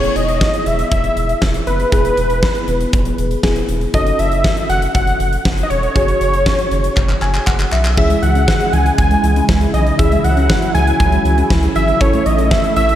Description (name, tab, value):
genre	synth-pop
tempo	119 BPM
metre	4/4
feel	straight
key	E major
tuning	A4 = 440 Hz
part	wide unison lead	melody	0.0-13.0 s	B4 to G#5	-18 LUFS	equal	tape echo
part	mellow FM electric piano	accompaniment	0.0-13.0 s	B3 to G#5	-23 LUFS	left 1 dB	chorus, phaser
part	round analog bass	bass	0.0-12.9 s	E1 to C#2	-17 LUFS	equal	none
part	huge arena drum kit	drums	0.0-13.0 s	handclaps, hi-hat, kick drum, snare drum, splash cymbal	-18 LUFS	equal	none
part	lush unison pad	sustained chords	8.0-13.0 s	C#3 to E4	-21 LUFS	right 1 dB	chorus, phaser
part	soft round pluck	arpeggios	8.0-12.8 s	E3 to E5	-23 LUFS	left 2 dB	chorus, tape echo
room	moderate lush hall reverb, RT60 2.4 s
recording	dreamy mix soaked in reverb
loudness	-12 LUFS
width	side -12 dB against mid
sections	0.0-13.0 A section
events	drum fill 7.0-8.0; FM electric piano fill 7.0-8.0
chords	0.0 E; 3.9 F#m; 8.0 C#m; 12.0 A